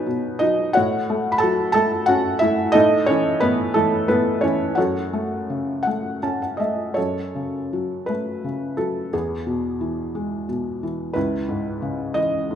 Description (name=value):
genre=classical, lyrical solo piano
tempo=53-61 BPM (dotted quarters)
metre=6/8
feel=rubato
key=F# dorian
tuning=A4 = 439 Hz
part: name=felt-muted upright piano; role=solo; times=0.0-12.6 s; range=C#2 to B5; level=-19 LUFS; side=equal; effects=none
room=moderate recital hall reverb, RT60 1.5 s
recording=recorded in a church or concert hall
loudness=-19 LUFS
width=side -9 dB against mid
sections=0.0-7.0 A section; 7.0-12.6 B section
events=felt piano fill 5.8-7.0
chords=0.0 B; 0.7 F#m/A; 2.7 A; 4.8 F#m; 9.1 E; 11.2 C#m7